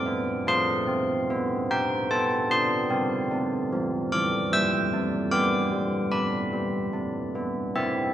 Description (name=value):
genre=classical, tune for church bells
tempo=74 BPM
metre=3/4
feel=straight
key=unclear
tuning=A4 = 439 Hz
part: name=carillon bells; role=solo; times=0.0-8.1 s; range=E3 to E6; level=-23 LUFS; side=equal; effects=none
room=wet scoring stage reverb, RT60 1.7 s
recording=recorded in a church or concert hall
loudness=-23 LUFS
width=side -11 dB against mid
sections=0.0-8.1 A section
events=none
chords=0.5 F/A; 2.9 C; 5.3 G